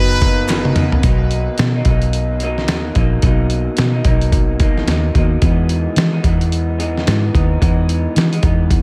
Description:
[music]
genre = indie pop, bedroom pop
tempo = 110 BPM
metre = 4/4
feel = swing 60% on 16ths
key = B major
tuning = A4 = 440 Hz
[part]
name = brilliant trumpet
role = melody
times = 0.0-0.8 s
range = B4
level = -25 LUFS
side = equal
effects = analog chorus, tape echo
[part]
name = electric guitar through a small old amp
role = accompaniment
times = 0.0-8.8 s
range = B2 to D#4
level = -24 LUFS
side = equal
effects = lush chorus, warbly pitch drift, tape echo
[part]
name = mellow tine electric piano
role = accompaniment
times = 0.0-1.1 s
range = B3 to A#5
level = -29 LUFS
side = equal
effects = tape echo
[part]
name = vintage muted fingered electric bass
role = bass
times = 0.0-8.8 s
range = F#1 to E3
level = -19 LUFS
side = equal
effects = none
[part]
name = dusty soul sampler-style drum kit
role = drums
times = 0.2-8.8 s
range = hi-hat, kick drum, ride cymbal, snare drum, toms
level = -19 LUFS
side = equal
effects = none
[part]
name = group handclap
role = percussion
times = 0.5-0.6 s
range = none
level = barely audible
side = none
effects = none
[sound]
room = light reverb, digital ambience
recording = echo-heavy mix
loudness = -16 LUFS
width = mono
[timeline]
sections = 0.0-1.0 A section; 1.0-8.8 B section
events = drum fill 0.5-1.0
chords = 0.0 Bmaj7; 5.4 Emaj7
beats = 0.49 | 1.04 1.58 2.13 2.68 | 3.23 3.78 4.33 4.87 | 5.42 5.97 6.52 7.07 | 7.61 8.16 8.71

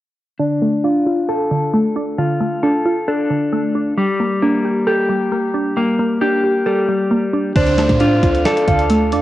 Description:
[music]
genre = hip hop, trap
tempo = 134 BPM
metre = 4/4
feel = half-time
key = unclear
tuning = A4 = 439 Hz
[part]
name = glassy wavetable pluck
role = accompaniment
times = 0.4-9.2 s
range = D3 to A4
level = -19 LUFS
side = right 2 dB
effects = chorus, low-pass filter, cassette tape
[part]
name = clean electric guitar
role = arpeggios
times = 0.4-9.2 s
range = G3 to A4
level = -18 LUFS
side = left 2 dB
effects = low-pass filter, cassette tape, analog delay
[part]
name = soft octave-layered synth lead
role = second line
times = 7.6-8.9 s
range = C5 to F5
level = -20 LUFS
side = right 4 dB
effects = chorus, cassette tape, analog delay
[part]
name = dark analog pad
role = sustained chords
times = 7.6-9.2 s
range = A4 to D6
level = -26 LUFS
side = right 4 dB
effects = chorus, cassette tape
[part]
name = clean 808-style bass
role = bass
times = 7.6-9.2 s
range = D2 to A2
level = -20 LUFS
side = right 1 dB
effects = none
[part]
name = dusty soul sampler-style drum kit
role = drums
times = 7.6-9.2 s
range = finger snaps, hi-hat, kick drum, snare drum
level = -20 LUFS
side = equal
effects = cassette tape
[part]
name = downlifter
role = sound effects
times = 7.6-9.2 s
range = none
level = -29 LUFS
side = right 1 dB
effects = none
[sound]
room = light reverb, digital ambience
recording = home recording on cassette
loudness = -14 LUFS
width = side -14 dB against mid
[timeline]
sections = 0.4-7.6 A section; 7.6-9.2 B section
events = filter sweep 0.4-7.6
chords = 0.4 Dm; 4.0 Gmadd9; 7.6 Dm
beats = | 0.39 0.84 1.29 1.74 | 2.18 2.63 3.08 3.53 | 3.98 4.42 4.87 5.32 | 5.77 6.21 6.66 7.11 | 7.56 8.01 8.45 8.90

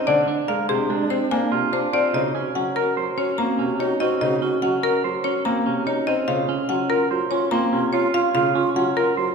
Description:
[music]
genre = classical, minimalist pattern music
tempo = 145 BPM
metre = 5/4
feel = straight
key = Eb dorian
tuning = A4 = 441 Hz
[part]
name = buzzing marimba with hard mallets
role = melody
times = 0.0-9.2 s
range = Ab4 to Bb5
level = -24 LUFS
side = left 4 dB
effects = none
[part]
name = warm baby grand piano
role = accompaniment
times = 0.0-9.3 s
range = C3 to C4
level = -26 LUFS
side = equal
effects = none
[part]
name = clean electric guitar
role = arpeggios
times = 0.0-9.3 s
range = C4 to C5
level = -24 LUFS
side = right 5 dB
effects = none
[part]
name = alto flute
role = second line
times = 0.1-9.3 s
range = D4 to Gb4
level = -27 LUFS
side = right 3 dB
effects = none
[sound]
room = wet recital hall reverb, RT60 1.7 s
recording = recorded in a church or concert hall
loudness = -19 LUFS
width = side -5 dB against mid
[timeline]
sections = 0.0-2.1 A section; 2.1-9.3 B section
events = none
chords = 0.1 Bb7; 2.1 Ebm7; 6.3 Gbmaj7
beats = | 0.07 0.48 0.90 1.31 1.73 | 2.14 2.55 2.97 3.38 3.79 | 4.21 4.62 5.04 5.45 5.86 | 6.28 6.69 7.11 7.52 7.93 | 8.35 8.76 9.17

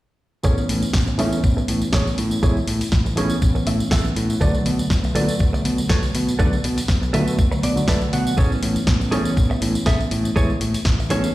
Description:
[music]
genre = nu-disco, nu disco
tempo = 121 BPM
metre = 4/4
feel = swing 54% on 16ths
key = A major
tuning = A4 = 441 Hz
[part]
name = reed electric piano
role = accompaniment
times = 0.4-11.3 s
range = D3 to E4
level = -24 LUFS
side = equal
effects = overdrive, fast tremolo, sidechain pumping, ping-pong delay
[part]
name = direct-recorded clean electric guitar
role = riff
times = 0.4-11.3 s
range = G#4 to F#5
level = -28 LUFS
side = right 2 dB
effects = lush chorus, low-pass filter, ping-pong delay
[part]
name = overdriven picked electric bass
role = bass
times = 0.4-11.2 s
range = A1 to B2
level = -23 LUFS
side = equal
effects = none
[part]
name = electronic kick drum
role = drums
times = 0.4-11.0 s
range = none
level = -19 LUFS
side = equal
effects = none
[part]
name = tambourine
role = percussion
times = 0.4-11.3 s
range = none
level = -34 LUFS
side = right 2 dB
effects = none
[part]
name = house drum kit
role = drums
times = 0.7-11.2 s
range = hi-hat, snare drum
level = -27 LUFS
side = equal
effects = none
[sound]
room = light reverb, digital ambience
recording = played on a big sound system in a bare room, large studio reverb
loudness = -17 LUFS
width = side -16 dB against mid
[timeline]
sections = 0.4-11.3 A section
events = filter sweep on clean electric guitar 0.4-11.3; clean electric guitar fill 3.4-4.4, 7.4-8.4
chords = 0.4 Amaj7; 4.4 Bm7; 8.4 Amaj7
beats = | 0.45 0.94 1.44 1.93 | 2.43 2.92 3.42 3.92 | 4.41 4.91 5.40 5.90 | 6.40 6.89 7.39 7.88 | 8.38 8.88 9.37 9.87 | 10.36 10.86

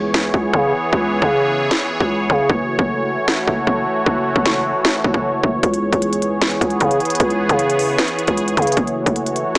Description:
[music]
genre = hip hop, trap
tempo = 153 BPM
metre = 4/4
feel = half-time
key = C# minor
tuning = A4 = 439 Hz
[part]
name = sweeping resonant pad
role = sustained chords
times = 0.0-9.6 s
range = E3 to C#5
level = -19 LUFS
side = equal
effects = chorus
[part]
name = growling 808-style bass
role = bass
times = 0.0-9.4 s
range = F#1 to C#3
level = -19 LUFS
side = equal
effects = none
[part]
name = trap drum kit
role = drums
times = 0.1-9.6 s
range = finger snaps, hi-hat, kick drum, snare drum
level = -19 LUFS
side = equal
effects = none
[sound]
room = light reverb, digital ambience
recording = small speaker sound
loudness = -15 LUFS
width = side -25 dB against mid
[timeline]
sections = 0.0-9.6 A section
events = break 0.0-5.6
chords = 0.0 C#m7; 2.5 F#m7; 5.6 C#m7; 8.8 F#m7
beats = 0.14 0.53 | 0.93 1.32 1.71 2.10 | 2.50 2.89 3.28 3.67 | 4.06 4.46 4.85 5.24 | 5.63 6.02 6.42 6.81 | 7.20 7.59 7.99 8.38 | 8.77 9.16 9.55

